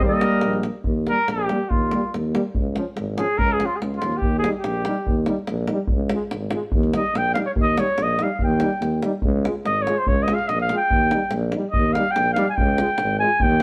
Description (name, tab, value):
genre	balkan folk, Balkan brass band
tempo	144 BPM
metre	2/4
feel	straight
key	Eb mixolydian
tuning	A4 = 441 Hz
part	clear flugelhorn	melody	0.0-13.6 s	F4 to Ab5	-24 LUFS	equal	none
part	warm clarinet	second line	0.0-0.6 s	Bb4	-30 LUFS	equal	none
part	clear trombone	accompaniment	0.0-13.3 s	F3 to Ab3	-30 LUFS	equal	none
part	mellow French horn	accompaniment	0.0-13.3 s	Bb3 to F4	-33 LUFS	equal	none
part	warm tuba	bass	0.0-13.6 s	Ab1 to Eb2	-27 LUFS	equal	none
part	davul	percussion	0.0-13.6 s	none	-28 LUFS	equal	none
room	moderate stone room reverb, RT60 1.0 s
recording	band playing live in one room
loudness	-22 LUFS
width	mono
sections	0.9-13.6 A section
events	flugelhorn solo 0.9-13.6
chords	0.0 Eb; 2.5 Db; 4.2 Eb; 5.9 Db; 6.7 Eb; 9.2 Db; 10.9 Eb; 12.6 Db